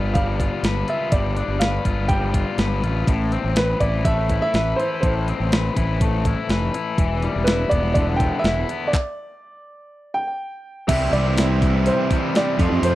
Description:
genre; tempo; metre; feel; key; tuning
indie rock; 123 BPM; 4/4; straight; A minor; A4 = 440 Hz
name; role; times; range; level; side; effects
warm upright piano; melody; 0.0-12.9 s; B4 to G5; -24 LUFS; right 1 dB; slapback echo
biting overdriven guitar; riff; 0.0-12.9 s; F2 to B4; -25 LUFS; left 5 dB; none
fuzz fingered electric bass; bass; 0.0-12.9 s; E1 to F2; -22 LUFS; equal; overdrive
clean 12-bit digital drum machine; drums; 0.2-12.9 s; crash cymbal, handclaps, hi-hat, kick drum, snare drum; -22 LUFS; equal; none
fuzz guitar; riff; 10.9-12.9 s; F2 to F4; -24 LUFS; right 8 dB; distortion, ensemble chorus, slapback echo
room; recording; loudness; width
little or no reverb; dry, close 1970s-style studio recording; -18 LUFS; side -16 dB against mid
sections
0.0-10.9 A section; 10.9-12.9 B section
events
stop 8.9-10.9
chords
0.0 G7; 3.1 Amadd9; 7.0 Em7; 10.9 C

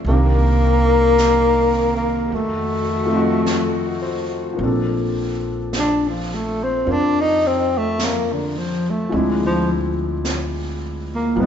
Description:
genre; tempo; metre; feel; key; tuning
jazz ballad; 53 BPM; 4/4; swing 69% on 8ths; Bb major; A4 = 440 Hz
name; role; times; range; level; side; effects
warm concert grand piano; accompaniment; 0.0-11.5 s; Eb3 to C5; -23 LUFS; left 1 dB; none
upright bass; bass; 0.0-11.5 s; G1 to F2; -24 LUFS; right 1 dB; none
breathy tenor saxophone; melody; 0.1-11.5 s; D3 to Eb4; -18 LUFS; left 1 dB; none
muted studio cello section; sustained chords; 0.1-4.6 s; Eb3 to Bb4; -29 LUFS; equal; none
jazz brush drum kit; drums; 0.1-11.5 s; brushed snare drum, hi-hat, snare drum; -30 LUFS; right 2 dB; none
room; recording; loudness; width
wet recital hall reverb, RT60 1.8 s; recorded in a church or concert hall, nothing above 7.7 kHz; -17 LUFS; side -8 dB against mid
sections
0.0-4.6 A section; 4.6-11.5 B section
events
tenor saxophone solo 4.6-11.5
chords
0.0 Cm7; 2.3 F7b9; 4.6 Bbmaj7; 9.1 Dm7b5

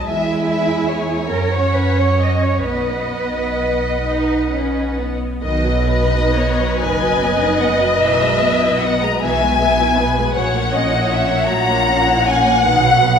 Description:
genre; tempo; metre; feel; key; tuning
classical, slow romantic movement for string orchestra; 42-54 BPM (dotted quarters); 6/8; rubato; B major; A4 = 439 Hz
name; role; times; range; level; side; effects
rich chamber violin section; melody; 0.0-13.2 s; D#5 to A#5; -22 LUFS; left 5 dB; none
warm studio violin section; second line; 0.0-13.2 s; B4 to F#5; -19 LUFS; left 1 dB; none
rich chamber viola section; accompaniment; 0.0-13.2 s; D#3 to C#5; -21 LUFS; equal; none
rich studio double bass section; bass; 0.0-13.2 s; F#1 to F#2; -22 LUFS; right 2 dB; none
warm chamber cello section; bass; 0.1-13.2 s; F#2 to D#5; -23 LUFS; right 3 dB; none
room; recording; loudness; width
wet scoring stage reverb, RT60 2.1 s; minimal, uncompressed stereo recording; -14 LUFS; side -7 dB against mid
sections
0.0-5.4 A section; 5.4-13.2 A section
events
none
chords
0.1 E; 1.3 F#; 2.7 B; 8.0 E/B; 10.3 F#7/A#; 12.6 B

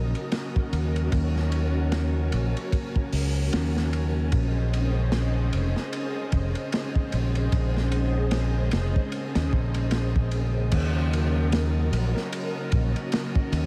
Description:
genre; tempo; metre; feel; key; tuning
trip hop; 75 BPM; 4/4; swing 59% on 16ths; Eb dorian; A4 = 440 Hz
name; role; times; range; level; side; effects
string machine, cellos; sustained chords; 0.0-13.7 s; Db4 to Eb5; -33 LUFS; equal; ensemble chorus
modern bright fingered electric bass; bass; 0.0-13.7 s; F1 to Eb2; -27 LUFS; equal; none
crunchy breakbeat drum kit; drums; 0.1-13.7 s; crash cymbal, hi-hat, kick drum, ride cymbal, snare drum; -31 LUFS; equal; none
room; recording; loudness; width
light reverb, small room ambience; vinyl crackle; -25 LUFS; mono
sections
0.0-10.7 A section; 10.7-13.7 B section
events
none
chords
0.0 Ebm7; 4.3 Bbm11; 10.7 Ebm7

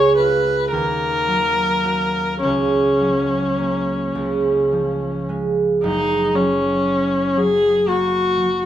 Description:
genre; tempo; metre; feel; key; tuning
classical, romantic duo for viola and harp; 34-40 BPM (dotted quarters); 6/8; rubato; F# major; A4 = 439 Hz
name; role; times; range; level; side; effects
rich viola; melody; 0.0-8.7 s; C#4 to C#5; -19 LUFS; left 2 dB; none
concert harp; accompaniment; 0.0-8.7 s; F#1 to F#4; -20 LUFS; right 3 dB; none
room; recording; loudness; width
moderate recital hall reverb, RT60 1.4 s; close, detailed microphones; -16 LUFS; side -11 dB against mid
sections
0.0-5.8 A section; 5.8-8.7 B section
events
none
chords
0.0 C#; 0.7 D#m7; 2.4 F#/C#; 4.2 C#; 5.8 F#

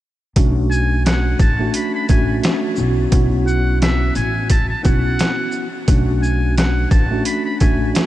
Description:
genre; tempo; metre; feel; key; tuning
hip hop, boom-bap hip-hop; 87 BPM; 4/4; swing 57% on 16ths; B dorian; A4 = 440 Hz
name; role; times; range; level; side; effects
mellow tine electric piano; accompaniment; 0.4-8.1 s; A3 to F#4; -21 LUFS; equal; medium stereo tremolo, cassette tape, high-pass filter, low-pass filter
upright bass; bass; 0.4-7.9 s; A1 to B1; -19 LUFS; equal; none
trip hop sampler-style drum kit; drums; 0.4-8.1 s; hi-hat, kick drum, shaker, snare drum; -18 LUFS; equal; overdrive, vintage 12-bit sampler grit
trumpet with metal mute; melody; 0.7-7.9 s; E5 to B5; -24 LUFS; equal; high-pass filter, low-pass filter, diffuse ambient delay
room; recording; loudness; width
light reverb, digital ambience; none; -14 LUFS; side -14 dB against mid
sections
0.4-8.1 A section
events
none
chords
0.4 Bm7; 2.8 A6; 5.9 Bm7

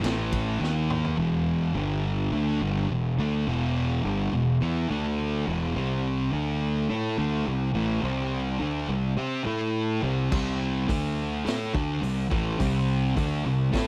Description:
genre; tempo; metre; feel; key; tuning
stoner and doom metal; 105 BPM; 4/4; straight; unclear; A4 = 441 Hz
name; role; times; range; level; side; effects
thick fuzz guitar; riff; 0.0-13.9 s; E2 to C5; -32 LUFS; equal; distortion
thick fuzz guitar; riff; 0.0-13.9 s; E2 to C5; -31 LUFS; equal; distortion
fuzz fingered electric bass; bass; 0.0-13.9 s; E1 to C3; -32 LUFS; equal; overdrive
raw garage drum kit; drums; 0.0-1.2, 10.3-13.9 s; crash cymbal, hi-hat, kick drum, ride cymbal, snare drum, toms; -34 LUFS; equal; none
room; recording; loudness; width
small room reverb; dry, close 1970s-style studio recording; -27 LUFS; mono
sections
0.0-1.2 A section; 1.2-13.9 B section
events
drum fill 0.6-1.2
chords
0.0 A5; 0.6 D#5; 1.2 E5; 1.8 G5; 2.3 Em; 4.9 D5; 5.5 E5; 5.8 C5; 6.3 D5; 6.9 C5; 9.5 A5; 10.0 C5; 10.9 D5; 11.5 C5

